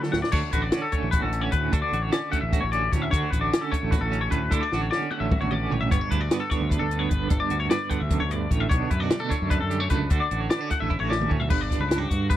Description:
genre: math rock and midwest emo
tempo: 301 BPM (eighths)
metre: 7/8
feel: straight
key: D major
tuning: A4 = 445 Hz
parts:
  - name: twelve-string electric guitar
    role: accompaniment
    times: 0.0-12.4 s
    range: F#2 to F#4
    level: -29 LUFS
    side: right 8 dB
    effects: tremolo
  - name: twangy electric guitar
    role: arpeggios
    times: 0.0-12.4 s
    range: F#4 to F#5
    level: -28 LUFS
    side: left 5 dB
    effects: lush chorus
  - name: fuzz fingered electric bass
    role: bass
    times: 0.0-12.4 s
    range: G1 to G2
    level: -28 LUFS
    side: equal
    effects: overdrive
  - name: compact cocktail drum kit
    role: drums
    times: 0.0-12.4 s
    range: crash cymbal, hi-hat, kick drum, snare drum, toms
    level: -25 LUFS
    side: equal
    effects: none
room: small room ambience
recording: dry, close 1970s-style studio recording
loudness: -22 LUFS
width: side -12 dB against mid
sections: 0.3-11.5 A section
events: drum fill 0.0-0.3, 4.7-5.9, 10.9-11.5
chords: 0.3 Dmaj7; 5.9 Gmaj7; 8.7 Bm7; 10.1 Dmaj7; 11.5 Gmaj7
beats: 0.13 | 0.33 0.53 0.73 0.93 1.13 1.33 1.53 | 1.73 1.93 2.13 2.33 2.53 2.73 2.92 | 3.12 3.32 3.52 3.72 3.92 4.12 4.32 | 4.52 4.72 4.92 5.12 5.32 5.52 5.71 | 5.92 6.11 6.31 6.51 6.71 6.91 7.11 | 7.31 7.51 7.71 7.91 8.11 8.31 8.51 | 8.71 8.91 9.11 9.31 9.51 9.71 9.90 | 10.11 10.30 10.51 10.71 10.90 11.10 11.30 | 11.50 11.70 11.90 12.10 12.30

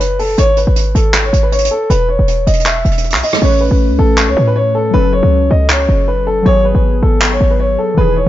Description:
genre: hip hop, trap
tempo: 158 BPM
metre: 4/4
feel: half-time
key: G# phrygian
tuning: A4 = 440 Hz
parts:
  - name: dark concert grand piano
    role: melody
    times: 0.0-8.3 s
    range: A4 to E5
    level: -15 LUFS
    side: equal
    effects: ping-pong delay
  - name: short 808-style bass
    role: bass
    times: 0.0-8.3 s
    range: E1 to A2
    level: -13 LUFS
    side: equal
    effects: none
  - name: jazz brush drum kit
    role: drums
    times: 0.0-7.3 s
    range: handclaps, hi-hat, rim click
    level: -17 LUFS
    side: right 1 dB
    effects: none
  - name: warbly lo-fi synth keys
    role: accompaniment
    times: 3.4-8.3 s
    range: D#3 to B4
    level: -18 LUFS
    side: left 3 dB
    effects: chorus, phaser
room: small room ambience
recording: dark, warm production, nothing above 7.5 kHz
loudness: -10 LUFS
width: side -13 dB against mid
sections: 0.0-8.3 A section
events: hi-hats muted 3.4-8.3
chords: 0.4 G#m; 1.9 E5; 3.4 Aadd9; 4.9 F#m; 6.5 G#m7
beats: 0.00 | 0.38 0.76 1.14 1.52 | 1.90 2.28 2.66 3.04 | 3.42 3.80 4.18 4.56 | 4.94 5.32 5.70 6.08 | 6.46 6.84 7.22 7.60 | 7.97

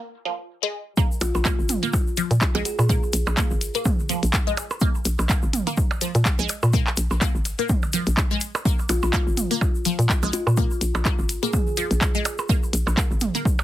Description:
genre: minimal techno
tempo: 125 BPM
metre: 4/4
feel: swing 56% on 16ths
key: unclear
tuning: A4 = 440 Hz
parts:
  - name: resonant blip pluck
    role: riff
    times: 0.3-13.4 s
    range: F3 to Bb3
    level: -27 LUFS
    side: left 1 dB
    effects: phaser, analog chorus, sidechain pumping, ping-pong delay
  - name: electronic kick drum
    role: drums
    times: 1.0-13.6 s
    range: none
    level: -22 LUFS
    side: equal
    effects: overdrive, small room ambience
  - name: egg shaker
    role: percussion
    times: 1.0-13.6 s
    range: none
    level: -34 LUFS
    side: left 3 dB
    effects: none
  - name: kalimba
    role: melody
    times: 1.2-2.7, 8.9-11.6 s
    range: F4 to Ab4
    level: -31 LUFS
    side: left 1 dB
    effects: tape echo
  - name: hollow knocking FM bass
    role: bass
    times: 1.2-13.3 s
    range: Ab1 to Bb2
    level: -22 LUFS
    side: equal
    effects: sidechain pumping
  - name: minimal click drum kit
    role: drums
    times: 1.2-13.4 s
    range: handclaps, hi-hat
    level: -26 LUFS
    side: equal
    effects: small room ambience
  - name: electronic percussion blips and toms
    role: percussion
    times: 1.2-13.6 s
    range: none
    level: -29 LUFS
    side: right 4 dB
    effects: small room ambience, tape echo
room: little or no reverb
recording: heavily compressed radio sound, high-pass filter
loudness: -20 LUFS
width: side -14 dB against mid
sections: 1.0-13.6 A section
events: break 0.0-1.0; drop 1.0-13.6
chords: 0.0 N.C.; 1.0 Bb5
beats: 0.01 0.49 | 0.97 1.45 1.93 2.41 | 2.89 3.37 3.85 4.33 | 4.81 5.29 5.77 6.25 | 6.73 7.21 7.69 8.17 | 8.65 9.13 9.61 10.09 | 10.57 11.05 11.53 12.01 | 12.49 12.97 13.45

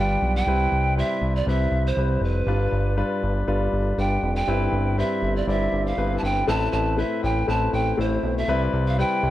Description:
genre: piano-driven pop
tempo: 120 BPM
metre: 4/4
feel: straight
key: C major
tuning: A4 = 440 Hz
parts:
  - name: breathy mellow pan flute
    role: melody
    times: 0.0-9.3 s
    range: B4 to A5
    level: -26 LUFS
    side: right 2 dB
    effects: plate reverb
  - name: warm concert grand piano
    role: accompaniment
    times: 0.0-9.3 s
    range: G2 to D5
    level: -25 LUFS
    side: left 2 dB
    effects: plate reverb
  - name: fat analog bass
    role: bass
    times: 0.0-9.3 s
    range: F1 to C2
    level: -24 LUFS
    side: equal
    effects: none
room: moderate large studio reverb, RT60 0.8 s, small room ambience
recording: dark, warm production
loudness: -20 LUFS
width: side -14 dB against mid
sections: 0.5-8.5 A section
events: none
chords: 0.5 Cmaj7; 2.5 G7; 4.5 Cmaj7/G; 6.5 Amadd9; 8.5 Cmaj7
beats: | 0.48 0.98 1.48 1.98 | 2.48 2.98 3.48 3.98 | 4.48 4.98 5.48 5.98 | 6.48 6.98 7.48 7.98 | 8.48 8.98

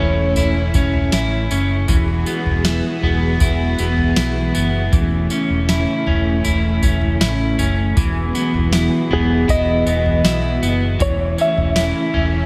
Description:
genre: dream pop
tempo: 79 BPM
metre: 4/4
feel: straight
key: E major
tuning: A4 = 440 Hz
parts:
  - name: clean lap steel guitar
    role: melody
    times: 0.0-0.7, 9.1-12.5 s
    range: G#4 to E5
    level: -24 LUFS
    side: equal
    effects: analog chorus, diffuse ambient delay
  - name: string machine, cellos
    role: sustained chords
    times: 0.0-12.5 s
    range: E3 to G#4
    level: -24 LUFS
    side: equal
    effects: ensemble chorus
  - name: electric guitar at the edge of break-up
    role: arpeggios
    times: 0.0-12.5 s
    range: E3 to E4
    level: -24 LUFS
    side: equal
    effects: subtle chorus, diffuse ambient delay
  - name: vintage muted fingered electric bass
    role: bass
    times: 0.0-12.5 s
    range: E1 to B1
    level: -22 LUFS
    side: equal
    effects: none
  - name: soft vintage rhythm box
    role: drums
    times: 0.4-12.3 s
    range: kick drum, snare drum, tambourine, toms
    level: -23 LUFS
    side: equal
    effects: overdrive
room: moderate lush hall reverb, RT60 2.4 s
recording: dreamy mix soaked in reverb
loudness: -17 LUFS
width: mono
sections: 0.0-12.5 A section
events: none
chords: 0.0 A/E; 1.9 Eadd9; 4.9 A/E; 8.0 Eadd9; 11.0 A/E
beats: 0.37 1.13 | 1.89 2.65 3.41 4.17 | 4.92 5.68 6.44 7.20 | 7.96 8.72 9.48 10.24 | 11.00 11.76

